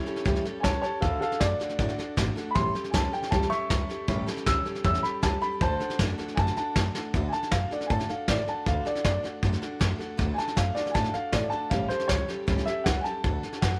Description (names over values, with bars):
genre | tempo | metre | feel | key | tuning
rockabilly | 157 BPM | 4/4 | straight | D major | A4 = 440 Hz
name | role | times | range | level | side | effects
warm upright piano | melody | 0.0-13.8 s | E4 to E6 | -32 LUFS | equal | none
picked steel-string acoustic guitar | accompaniment | 0.0-13.8 s | A2 to A4 | -36 LUFS | equal | none
upright bass | bass | 0.0-13.8 s | G#1 to A2 | -32 LUFS | equal | none
soft brush drum kit | drums | 0.1-13.7 s | hi-hat, kick drum, snare drum | -32 LUFS | equal | none
room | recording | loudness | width
light reverb, studio ambience | none | -27 LUFS | mono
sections
0.0-7.1 A section; 7.1-13.8 B section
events
upright piano solo 0.0-7.1; drum fill 6.9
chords
0.0 A7; 1.0 D; 2.6 A7; 5.6 D; 11.7 A7; 13.2 D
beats
0.26 0.64 | 1.03 1.41 1.79 2.17 | 2.56 2.94 3.32 3.70 | 4.08 4.46 4.85 5.23 | 5.61 5.99 6.37 6.75 | 7.14 7.52 7.90 8.28 | 8.66 9.04 9.43 9.81 | 10.19 10.57 10.95 11.33 | 11.71 12.10 12.48 12.86 | 13.24 13.62